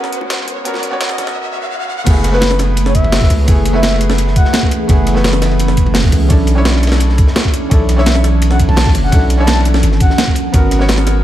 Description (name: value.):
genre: liquid drum and bass.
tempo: 170 BPM.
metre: 4/4.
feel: straight.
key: F# minor.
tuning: A4 = 439 Hz.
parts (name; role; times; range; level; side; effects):
bright concert grand piano; accompaniment; 0.0-11.2 s; A3 to C#5; -20 LUFS; equal; vintage 12-bit sampler grit, digital delay.
glassy FM pad; sustained chords; 0.0-11.2 s; E3 to C#5; -22 LUFS; right 1 dB; ensemble chorus, built-in reverb, sidechain pumping.
breakbeat sampler-style drum kit; drums; 0.0-11.1 s; crash cymbal, hi-hat, snare drum; -18 LUFS; right 1 dB; high-pass filter on hats, high-pass filter on snare, high-pass filter on cymbals, high-pass filter on room.
riser and swell; sound effects; 0.0-2.1 s; none; -24 LUFS; equal; none.
bongos and congas; percussion; 0.2-1.3 s; none; -35 LUFS; left 5 dB; none.
long sustained 808-style bass; bass; 2.1-11.2 s; F#1 to C#2; -13 LUFS; equal; none.
crunchy breakbeat drum kit; drums; 2.1-11.2 s; hi-hat, ride cymbal, snare drum; -27 LUFS; equal; high-pass filter on cymbals, high-pass filter on hats, high-pass filter on snare, high-pass filter on room.
electronic kick drum; drums; 2.1-10.6 s; none; -13 LUFS; equal; none.
breathy flute-like synth lead; melody; 2.3-4.6, 8.0-10.3 s; B4 to A5; -22 LUFS; left 2 dB; chorus, dub echo.
room: light reverb, studio reverb.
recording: high-pass filter.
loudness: -10 LUFS.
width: side -12 dB against mid.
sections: 0.0-2.1 A section; 2.1-11.2 B section.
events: build-up 0.0-2.1; riser 0.0-2.1; break 1.4-2.1; swell 1.4-2.1; drop 2.1-11.2.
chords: 0.0 G#m11; 2.1 F#m11; 6.3 Bm11; 9.8 G#m11.